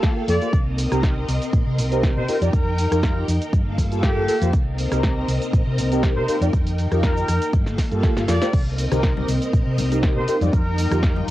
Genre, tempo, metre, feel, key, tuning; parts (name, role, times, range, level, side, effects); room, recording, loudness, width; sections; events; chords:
filtered disco house; 120 BPM; 4/4; swing 54% on 16ths; C dorian; A4 = 435 Hz
mellow synth brass; accompaniment; 0.0-11.3 s; Bb3 to D5; -24 LUFS; equal; chorus, phaser, sidechain pumping, cassette tape
string machine, full ensemble; sustained chords; 0.0-11.3 s; Bb3 to G5; -28 LUFS; left 1 dB; ensemble chorus, vintage 12-bit sampler grit, sidechain pumping, cassette tape
electronic kick drum; drums; 0.0-11.1 s; -20 LUFS; equal; overdrive, cassette tape
punchy analog drum machine; drums; 0.0-11.3 s; cabasa, crash cymbal, hi-hat, rim click, snare drum; -30 LUFS; equal; cassette tape, sidechain pumping on hats, sidechain pumping on perc, sidechain pumping on cymbals
mellow trumpet section; melody; 0.3-11.2 s; G4 to D5; -29 LUFS; left 1 dB; sidechain pumping, cassette tape
hollow-body short-scale fingered electric bass; bass; 0.3-11.3 s; G1 to C3; -23 LUFS; equal; sidechain pumping
egg shaker and congas; percussion; 8.5-11.3 s; -31 LUFS; left 6 dB; sidechain pumping on perc
little or no reverb; home recording on cassette; -18 LUFS; side -15 dB against mid
0.0-11.3 A section
drum fill 7.8-8.5
0.0 Gm9; 0.5 Cm7; 2.3 F9sus4; 3.5 Gm9; 4.5 Cm7; 6.3 F9sus4; 7.5 Gm9; 8.5 Cm7; 10.3 F9sus4